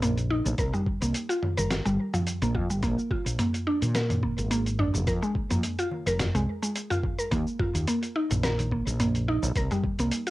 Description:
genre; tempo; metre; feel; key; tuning
organic downtempo; 107 BPM; 4/4; swing 55% on 16ths; unclear; A4 = 440 Hz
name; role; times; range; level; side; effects
mallet-like synth pluck; arpeggios; 0.0-10.3 s; F3 to Bb4; -28 LUFS; equal; chorus, cassette tape, analog delay
woody fretless electric bass; bass; 0.0-10.1 s; F1 to Bb2; -28 LUFS; equal; none
dusty soul sampler-style drum kit; drums; 0.0-10.3 s; cabasa, hi-hat, snare drum, toms; -31 LUFS; equal; overdrive, cassette tape
darbuka; percussion; 0.3-10.1 s; none; -38 LUFS; left 1 dB; none
electronic kick drum; drums; 0.6-10.0 s; none; -31 LUFS; equal; overdrive, cassette tape
room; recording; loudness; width
light reverb; home recording on cassette; -25 LUFS; side -17 dB against mid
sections
0.0-10.3 A section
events
none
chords
0.0 Eb5; 0.6 N.C.; 2.8 Bb7; 5.1 Fm; 7.3 Ebsus2; 9.6 C5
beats
0.03 | 0.59 1.15 1.71 2.27 | 2.83 3.39 3.95 4.51 | 5.07 5.63 6.19 6.75 | 7.32 7.88 8.44 9.00 | 9.56 10.12

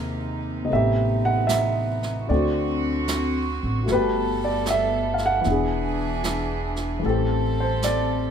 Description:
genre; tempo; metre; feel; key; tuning
jazz ballad; 76 BPM; 4/4; swing 68% on 8ths; unclear; A4 = 441 Hz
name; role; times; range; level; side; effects
warm grand piano; accompaniment; 0.0-8.3 s; C3 to G5; -24 LUFS; equal; none
warm chamber string section; sustained chords; 0.0-8.3 s; C3 to A4; -28 LUFS; right 1 dB; none
upright bass; bass; 0.0-8.3 s; E1 to Eb2; -27 LUFS; equal; none
jazz brush drum kit; drums; 0.7-8.3 s; brushed snare drum, hi-hat, snare drum; -32 LUFS; right 4 dB; none
room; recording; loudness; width
light reverb; minimal, uncompressed stereo recording; -21 LUFS; side -7 dB against mid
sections
0.0-8.3 A section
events
none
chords
0.0 Abmaj9; 0.7 Am9; 2.3 D7; 3.9 Gmaj9; 5.5 E7; 7.0 Am7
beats
| 0.70 1.50 2.29 3.08 | 3.87 4.66 5.45 6.25 | 7.04 7.83

